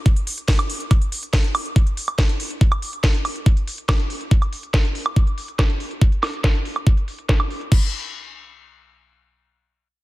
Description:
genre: trance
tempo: 141 BPM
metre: 4/4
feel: straight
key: none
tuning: none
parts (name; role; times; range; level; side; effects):
- electronic kick drum; drums; 0.1-7.8 s; none; -16 LUFS; equal; overdrive
- techno drum kit; drums; 0.1-7.8 s; crash cymbal, hi-hat, snare drum, woodblock; -25 LUFS; right 1 dB; overdrive, low-pass filter on hats, low-pass filter on snare, low-pass filter on perc, low-pass filter on cymbals
room: little or no reverb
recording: dense, heavily limited modern master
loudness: -18 LUFS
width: side -18 dB against mid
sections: 0.0-7.7 A section; 7.7-9.4 B section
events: filter sweep on drum 0.0-7.7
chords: none

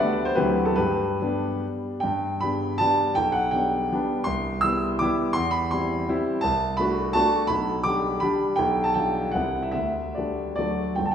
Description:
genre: classical, romantic triple-time dance for piano with dotted rhythms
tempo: 136-179 BPM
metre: 3/4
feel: rubato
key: G major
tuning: A4 = 442 Hz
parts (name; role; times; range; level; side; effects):
- warm concert grand piano; solo; 0.0-11.1 s; G1 to E6; -22 LUFS; equal; none
room: wet recital hall reverb, RT60 1.8 s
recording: heard from further back in the room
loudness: -22 LUFS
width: side -8 dB against mid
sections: 0.0-2.0 A section; 2.0-11.0 B section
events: none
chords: 0.4 D9; 0.8 G; 3.2 G/B; 4.3 Cmaj7; 5.4 C/E; 6.4 D7/C; 7.5 G/B; 8.6 G7/B; 9.3 C; 9.7 Dsus4; 10.6 D

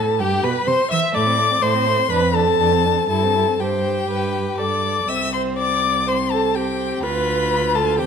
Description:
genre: quick classical-period movement for string quartet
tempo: 124 BPM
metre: 4/4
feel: rubato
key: C major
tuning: A4 = 439 Hz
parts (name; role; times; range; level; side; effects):
- warm violin; melody; 0.0-8.1 s; G5 to E6; -22 LUFS; left 10 dB; none
- warm violin; second line; 0.0-8.1 s; A3 to E5; -25 LUFS; left 3 dB; none
- rich viola; accompaniment; 0.0-8.1 s; G4 to E5; -22 LUFS; right 2 dB; none
- warm cello; bass; 0.0-8.1 s; C2 to E3; -24 LUFS; right 5 dB; none
room: moderate recital hall reverb, RT60 1.7 s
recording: none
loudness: -17 LUFS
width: side -7 dB against mid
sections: 0.0-8.1 A section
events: none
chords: 0.2 C/G; 1.1 Am; 2.1 Dm7/F; 3.1 C/G; 4.1 G; 5.1 C5; 7.0 Bdim/D

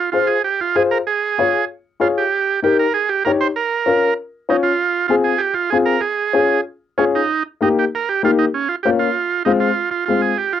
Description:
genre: latin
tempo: 193 BPM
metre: 4/4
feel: straight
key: F minor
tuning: A4 = 441 Hz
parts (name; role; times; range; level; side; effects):
- combo organ; melody; 0.0-10.6 s; Db4 to C5; -18 LUFS; right 7 dB; cassette tape
- dark upright piano; accompaniment; 0.1-10.3 s; Ab3 to Db5; -16 LUFS; left 4 dB; cassette tape
room: moderate booth ambience, RT60 0.3 s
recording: home recording on cassette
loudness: -15 LUFS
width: side -10 dB against mid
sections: 0.0-9.8 A section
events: none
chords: 0.0 Fm; 1.1 Db; 2.3 Eb; 3.6 Bbm; 4.8 Fm; 6.0 Db; 7.3 Eb; 8.5 Bbm; 9.2 Fm

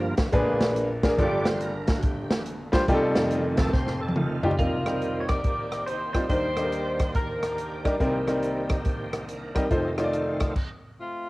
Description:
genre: uptempo gospel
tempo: 141 BPM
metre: 4/4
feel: swing 64% on 8ths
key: unclear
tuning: A4 = 440 Hz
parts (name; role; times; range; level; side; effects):
- bright concert grand piano; accompaniment; 0.0-10.5 s; F1 to D5; -26 LUFS; equal; cassette tape
- bright tonewheel organ; sustained chords; 0.0-10.5 s; F2 to F5; -33 LUFS; right 2 dB; fast rotary speaker, overdrive, chorus vibrato, cassette tape
- swinging big-band drum kit; drums; 0.2-10.7 s; crash cymbal, hi-hat, kick drum, rim click, snare drum, toms; -27 LUFS; equal; cassette tape
- clean electric guitar; melody; 4.6-7.8 s; F4 to D5; -33 LUFS; right 1 dB; analog chorus, cassette tape, tape echo
- warm saxophone section; melody; 4.6-8.0, 11.0-11.3 s; A3 to D5; -33 LUFS; left 1 dB; cassette tape, tape echo
room: light reverb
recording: home recording on cassette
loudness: -23 LUFS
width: side -21 dB against mid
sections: 0.0-4.6 A section; 4.6-11.3 B section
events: tonewheel organ solo 0.0-4.6; drum fill 3.7-4.6; stop 10.6-11.3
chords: 0.3 Bb7b9; 1.2 Gm11; 2.9 F9; 4.6 Cm7; 6.3 Ebmaj7; 8.0 Cm7; 9.7 F7

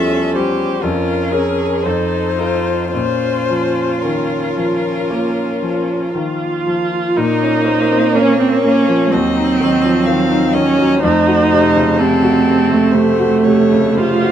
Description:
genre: classical, slow romantic movement for piano quartet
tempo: 53-64 BPM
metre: 4/4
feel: rubato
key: Bb minor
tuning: A4 = 440 Hz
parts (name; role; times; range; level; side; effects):
- warm violin; melody; 0.0-14.3 s; A4 to F5; -21 LUFS; left 9 dB; none
- clear cello; second line; 0.0-14.3 s; Gb3 to A4; -20 LUFS; right 6 dB; none
- bright grand piano; accompaniment; 0.0-14.3 s; Eb2 to Bb4; -18 LUFS; left 2 dB; none
- rich viola; accompaniment; 0.0-14.3 s; A3 to F4; -16 LUFS; right 2 dB; none
room: light reverb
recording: close, detailed microphones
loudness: -12 LUFS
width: side -10 dB against mid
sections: 0.0-7.2 A section; 7.2-14.3 A section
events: none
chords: 0.0 Em6; 0.8 Bbm/F; 1.8 F7; 2.9 Bbm; 9.1 Cdim/Eb; 11.0 F7b9

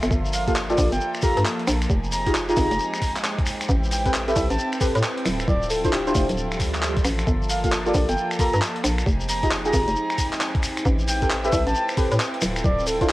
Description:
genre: UK garage, two-step garage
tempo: 134 BPM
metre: 4/4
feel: swing 64% on 16ths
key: G dorian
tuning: A4 = 445 Hz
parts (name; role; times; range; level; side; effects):
- warm studio violin section; sustained chords; 0.0-13.1 s; Bb3 to B4; -33 LUFS; equal; sidechain pumping, cassette tape
- hollow knocking FM bass; bass; 0.0-13.1 s; D1 to A2; -25 LUFS; equal; none
- boom bap sampler-style drum kit; drums; 0.0-13.1 s; finger snaps, handclaps, hi-hat; -29 LUFS; equal; cassette tape
- shekere; percussion; 0.0-13.1 s; none; -32 LUFS; left 1 dB; none
- warbly tape-like pad; texture; 0.0-13.1 s; F3 to C6; -33 LUFS; right 1 dB; chorus, built-in reverb, sidechain pumping, cassette tape
- electronic kick drum; drums; 0.1-13.1 s; none; -24 LUFS; equal; cassette tape
- breathy flute-like synth lead; melody; 0.3-13.1 s; G4 to Bb5; -27 LUFS; equal; chorus, vintage 12-bit sampler grit, cassette tape
- deep mellow chord stab; stabs; 0.5-13.1 s; Bb3 to C5; -26 LUFS; equal; chorus, cassette tape, tape echo
- swell; sound effects; 6.5-7.3 s; none; -32 LUFS; right 3 dB; none
room: light reverb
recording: home recording on cassette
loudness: -20 LUFS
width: side -18 dB against mid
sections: 0.0-13.1 A section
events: swell 6.5-7.3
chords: 0.1 Gm9; 1.9 Fm9; 3.7 Am9; 5.3 Dm9; 7.3 Gm9; 9.1 Fm9; 10.9 Am9; 12.4 Dm9

